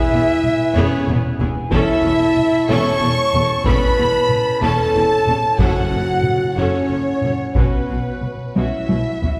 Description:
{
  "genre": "cinematic, epic orchestral film score",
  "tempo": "62 BPM (dotted quarters)",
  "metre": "6/8",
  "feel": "straight",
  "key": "unclear",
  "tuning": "A4 = 438 Hz",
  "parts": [
    { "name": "rich symphonic violin section", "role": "melody", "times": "0.0-9.4 s", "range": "B4 to C#6", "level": "-31 LUFS", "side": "equal", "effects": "none" },
    { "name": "mellow hollow silver concert flute", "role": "second line", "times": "0.0-9.4 s", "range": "B4 to C#6", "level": "-27 LUFS", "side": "equal", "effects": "none" },
    { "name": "rich studio violin section", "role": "second line", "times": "0.0-8.6 s", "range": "B4 to C#6", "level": "-30 LUFS", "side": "equal", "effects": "none" },
    { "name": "rich symphonic viola section", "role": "accompaniment", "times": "0.0-9.3 s", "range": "B3 to A4", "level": "-30 LUFS", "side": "equal", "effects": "none" },
    { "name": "dark French horn section", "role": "sustained chords", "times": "0.0-9.4 s", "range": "B3 to C#5", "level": "-22 LUFS", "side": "equal", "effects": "none" },
    { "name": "dark woodwind section", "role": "sustained chords", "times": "0.0-9.2 s", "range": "B3 to A5", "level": "-31 LUFS", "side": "equal", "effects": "none" },
    { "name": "clear chamber cello section", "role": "bass", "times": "0.1-9.3 s", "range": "E2 to B2", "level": "-28 LUFS", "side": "equal", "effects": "none" },
    { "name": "clear symphonic double bass section", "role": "bass", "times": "0.1-9.3 s", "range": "E1 to B1", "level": "-27 LUFS", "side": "equal", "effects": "none" },
    { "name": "taiko ensemble", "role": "drums", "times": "0.4-9.4 s", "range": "none", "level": "-24 LUFS", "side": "equal", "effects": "none" },
    { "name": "timpani", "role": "percussion", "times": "5.6-6.5 s", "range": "F#2", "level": "-28 LUFS", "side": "equal", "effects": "none" }
  ],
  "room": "wet scoring stage reverb, RT60 1.8 s",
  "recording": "heard from further back in the room",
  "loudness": "-17 LUFS",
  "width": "mono",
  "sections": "0.0-9.4 A section",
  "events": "drum fill 0.8-1.7, 8.6-9.4",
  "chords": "0.0 E; 1.7 A/E; 5.6 F#m7; 7.6 Bsus2",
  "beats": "0.77 | 1.73 2.70 | 3.66 4.62 | 5.59 6.57 | 7.55 8.56"
}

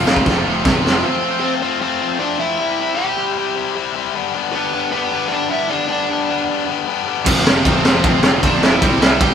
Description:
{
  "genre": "punk rock",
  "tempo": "154 BPM",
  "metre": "4/4",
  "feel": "straight",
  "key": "unclear",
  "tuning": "A4 = 440 Hz",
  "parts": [
    { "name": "overdriven semi-hollow guitar", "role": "melody", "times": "0.0-9.3 s", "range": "B3 to G5", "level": "-21 LUFS", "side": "right 1 dB", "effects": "none" },
    { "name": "distorted electric guitar", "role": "riff", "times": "0.0-9.3 s", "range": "F2 to F4", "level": "-20 LUFS", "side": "left 9 dB", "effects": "overdrive" },
    { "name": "tight distorted guitar", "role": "riff", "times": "0.0-1.5, 7.2-9.3 s", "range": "F2 to C4", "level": "-20 LUFS", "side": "right 6 dB", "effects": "distortion" },
    { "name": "fuzz picked electric bass", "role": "bass", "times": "0.0-1.0, 7.3-9.3 s", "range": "F1 to C2", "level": "-23 LUFS", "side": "right 1 dB", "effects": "overdrive" },
    { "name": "raw garage drum kit", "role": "drums", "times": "0.1-0.9, 7.3-9.3 s", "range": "crash cymbal, kick drum, ride cymbal, snare drum", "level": "-14 LUFS", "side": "right 1 dB", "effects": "none" }
  ],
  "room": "light reverb",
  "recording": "band playing live in one room",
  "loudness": "-15 LUFS",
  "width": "side -8 dB against mid",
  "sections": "0.0-1.0 A section; 1.0-9.3 B section",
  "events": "drum fill 0.3-1.0",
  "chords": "0.0 F; 2.6 C; 4.2 G; 7.3 F; 8.8 C",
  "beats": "0.27 0.65 | 1.04 1.43 1.82 2.21 | 2.60 2.98 3.37 3.76 | 4.15 4.54 4.93 5.32 | 5.71 6.10 6.49 6.88 | 7.27 7.66 8.04 8.44 | 8.82 9.21"
}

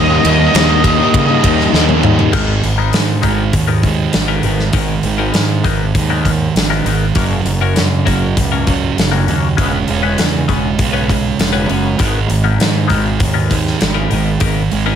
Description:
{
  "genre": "quiet-loud alternative rock",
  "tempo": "99 BPM",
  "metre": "4/4",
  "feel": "straight",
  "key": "G# minor",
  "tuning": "A4 = 441 Hz",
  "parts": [
    { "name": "octave-fuzz lead guitar", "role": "melody", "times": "0.0-1.7 s", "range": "D#5", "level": "-17 LUFS", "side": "right 1 dB", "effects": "distortion, digital delay" },
    { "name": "crunchy overdriven guitar", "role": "riff", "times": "0.0-2.3 s", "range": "D#3 to D#4", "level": "-16 LUFS", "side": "left 15 dB", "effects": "harmonic tremolo" },
    { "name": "thick fuzz guitar", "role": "riff", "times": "0.0-15.0 s", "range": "F#2 to D#4", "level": "-16 LUFS", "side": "right 7 dB", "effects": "distortion" },
    { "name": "fuzz fingered electric bass", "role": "bass", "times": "0.0-15.0 s", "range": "E1 to C#3", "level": "-18 LUFS", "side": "left 1 dB", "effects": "overdrive" },
    { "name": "big rock drum kit", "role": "drums", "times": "0.2-14.9 s", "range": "crash cymbal, hi-hat, kick drum, ride cymbal, snare drum, toms", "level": "-17 LUFS", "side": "left 1 dB", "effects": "none" },
    { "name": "twelve-string electric guitar", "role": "arpeggios", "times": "2.3-15.0 s", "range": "G#3 to B4", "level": "-20 LUFS", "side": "left 12 dB", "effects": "phaser" }
  ],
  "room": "light reverb",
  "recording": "none",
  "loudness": "-12 LUFS",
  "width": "side -8 dB against mid",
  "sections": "0.0-2.3 A section; 2.3-15.0 B section",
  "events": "drum fill 1.7-2.3",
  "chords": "0.0 D#; 2.3 G#madd9; 7.2 F#; 9.6 C#m7/E; 12.0 G#madd9",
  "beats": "0.54 1.14 1.74 | 2.34 2.94 3.54 4.14 | 4.75 5.35 5.95 6.56 | 7.16 7.77 8.37 8.98 | 9.58 10.19 10.79 11.39 | 12.00 12.60 13.21 13.81 | 14.42"
}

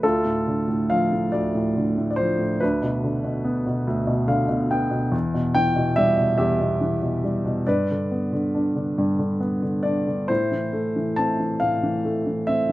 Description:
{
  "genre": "classical, lyrical solo piano",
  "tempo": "47 BPM (dotted quarters)",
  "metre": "6/8",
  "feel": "uneven beats, rubato",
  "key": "D dorian",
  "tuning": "A4 = 441 Hz",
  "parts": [
    { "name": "warm grand piano", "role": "solo", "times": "0.0-12.7 s", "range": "D2 to A5", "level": "-20 LUFS", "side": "equal", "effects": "none" }
  ],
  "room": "light reverb",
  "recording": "none",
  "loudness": "-20 LUFS",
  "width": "side -16 dB against mid",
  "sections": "0.0-12.7 A section",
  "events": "grand piano fill 3.9-5.1",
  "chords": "0.0 Dm; 2.6 Dm6; 5.1 Em; 7.7 G; 10.3 Am",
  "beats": "| 0.03 1.33 | 2.62 3.88 | 5.13 6.38 | 7.66 8.97 | 10.30 11.62"
}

